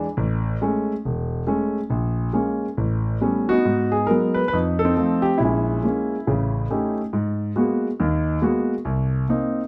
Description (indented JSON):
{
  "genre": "solo jazz",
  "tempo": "138 BPM",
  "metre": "4/4",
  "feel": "swing 67% on 8ths, rubato",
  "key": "unclear",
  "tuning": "A4 = 440 Hz",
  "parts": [
    { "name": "warm concert grand piano", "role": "solo", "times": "0.0-9.6 s", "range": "E1 to B4", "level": "-22 LUFS", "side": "equal", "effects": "none" }
  ],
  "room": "light reverb",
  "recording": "none",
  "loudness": "-22 LUFS",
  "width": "mono",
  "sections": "0.0-9.7 A section",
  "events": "none",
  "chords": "0.2 Amaj7; 1.9 A#m7; 2.8 A9; 3.7 G#m7; 4.5 F7; 5.4 A#m7b5; 6.3 A7#11; 7.1 G#m9; 8.9 Cm7"
}